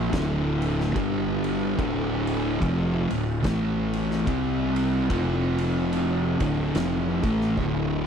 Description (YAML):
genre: stoner and doom metal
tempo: 72 BPM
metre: 4/4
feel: swing 58% on 8ths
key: D minor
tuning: A4 = 439 Hz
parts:
  - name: thick fuzz guitar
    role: riff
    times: 0.0-8.1 s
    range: D2 to C4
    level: -24 LUFS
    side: equal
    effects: distortion
  - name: fuzz fingered electric bass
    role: bass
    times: 0.0-8.1 s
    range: D1 to C2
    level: -30 LUFS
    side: left 1 dB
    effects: overdrive
  - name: oversized low-tuned drum kit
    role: drums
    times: 0.1-7.8 s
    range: kick drum, ride cymbal, snare drum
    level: -31 LUFS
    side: equal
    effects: none
room: little or no reverb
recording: none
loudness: -22 LUFS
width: side -7 dB against mid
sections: 0.0-8.1 A section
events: drum fill 7.6-8.1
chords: 0.1 D5; 1.0 G5; 1.8 Dm; 3.4 A5; 4.3 C5; 5.1 F5; 6.3 Dm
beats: 0.13 0.96 | 1.78 2.61 3.44 4.27 | 5.10 5.92 6.75 7.58